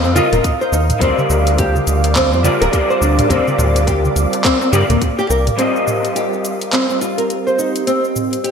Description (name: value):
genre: organic downtempo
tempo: 105 BPM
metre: 4/4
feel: swing 59% on 16ths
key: C minor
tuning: A4 = 440 Hz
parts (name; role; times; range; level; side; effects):
- electric guitar through a small old amp; accompaniment; 0.0-8.5 s; G3 to Eb5; -20 LUFS; left 1 dB; ensemble chorus, sidechain pumping, ping-pong delay
- ethereal airy pad; sustained chords; 0.0-8.5 s; C4 to Eb6; -22 LUFS; right 3 dB; ensemble chorus, built-in reverb, sidechain pumping
- nylon-string guitar; arpeggios; 0.0-8.5 s; Bb3 to C5; -18 LUFS; left 1 dB; lush chorus, low-pass filter, ping-pong delay
- round analog bass; bass; 0.0-5.5 s; D1 to G2; -16 LUFS; equal; none
- afro-pop drum kit; drums; 0.0-8.5 s; handclaps, hi-hat, shaker, toms; -22 LUFS; equal; small room ambience, gated reverb
- darbuka; percussion; 0.0-5.4 s; none; -26 LUFS; left 1 dB; none
- electronic kick drum; drums; 0.4-5.2 s; none; -20 LUFS; equal; small room ambience
room: wet lush hall reverb, RT60 2.0 s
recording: bright 1980s-style digital production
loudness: -13 LUFS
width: side -6 dB against mid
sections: 0.0-5.6 A section; 5.6-8.5 B section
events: filter sweep on ambient pad 5.6-8.5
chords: 0.0 Ebsus2; 1.0 Bb69/D; 5.6 Cm7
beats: 0.44 | 1.01 1.58 2.16 2.73 | 3.30 3.87 4.44 5.01 | 5.58 6.16 6.73 7.30 | 7.87 8.44